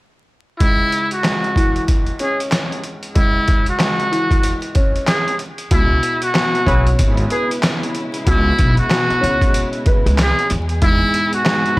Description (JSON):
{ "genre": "hip hop, boom-bap hip-hop", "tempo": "94 BPM", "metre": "4/4", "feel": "swing 60% on 16ths", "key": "C# minor", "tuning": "A4 = 437 Hz", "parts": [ { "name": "trumpet with metal mute", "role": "melody", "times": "0.6-11.8 s", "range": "E4 to G#4", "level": "-19 LUFS", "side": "equal", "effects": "high-pass filter, low-pass filter, analog delay" }, { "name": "dark grand piano", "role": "accompaniment", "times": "0.6-11.8 s", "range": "C#2 to B4", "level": "-23 LUFS", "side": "equal", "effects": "cassette tape, high-pass filter, low-pass filter" }, { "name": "trip hop sampler-style drum kit", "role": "drums", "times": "0.6-11.8 s", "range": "handclaps, hi-hat, kick drum, snare drum", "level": "-18 LUFS", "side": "equal", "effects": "none" }, { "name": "warm studio string section", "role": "sustained chords", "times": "5.9-11.8 s", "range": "B2 to G#4", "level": "-27 LUFS", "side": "equal", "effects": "high-pass filter, low-pass filter" }, { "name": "upright bass", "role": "bass", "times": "5.7-11.0 s", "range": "G#1 to E2", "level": "-18 LUFS", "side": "equal", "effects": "transformer saturation" }, { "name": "mellow trumpet section", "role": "stabs", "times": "6.7-6.9, 11.8 s", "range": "E4 to B4", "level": "-28 LUFS", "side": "right 1 dB", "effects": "high-pass filter, low-pass filter, analog delay" } ], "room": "little or no reverb", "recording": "dry, gritty hardware recording, vinyl crackle", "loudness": "-14 LUFS", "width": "side -19 dB against mid", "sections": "0.6-5.7 A section; 5.7-11.8 B section", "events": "none", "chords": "0.6 C#m; 5.4 N.C.; 5.7 C#m7; 10.5 E" }